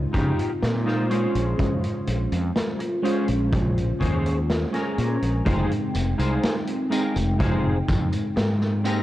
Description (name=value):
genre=vaporwave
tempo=62 BPM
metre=4/4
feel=straight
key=unclear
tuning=A4 = 440 Hz
part: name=FM electric piano with soft pad layer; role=accompaniment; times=0.0-9.0 s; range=Ab3 to G5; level=-27 LUFS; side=right 1 dB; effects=analog chorus, vintage 12-bit sampler grit, analog delay
part: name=fretless electric bass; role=bass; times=0.0-9.0 s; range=F1 to Db3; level=-24 LUFS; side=equal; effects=tube saturation
part: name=clean electric guitar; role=riff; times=0.1-9.0 s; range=C4 to C5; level=-30 LUFS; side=left 1 dB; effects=ensemble chorus, analog delay
part: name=kick drum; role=drums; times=0.1-8.1 s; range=none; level=-25 LUFS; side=equal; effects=none
part: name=vintage drum kit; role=drums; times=0.1-9.0 s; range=hi-hat, snare drum, tambourine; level=-30 LUFS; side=equal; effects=none
room=light reverb, studio reverb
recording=dark, warm production, cassette tape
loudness=-21 LUFS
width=side -14 dB against mid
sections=0.0-5.5 A section; 5.5-9.0 B section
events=none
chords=0.0 Dbmaj9; 1.1 Bbm9; 5.5 Fm7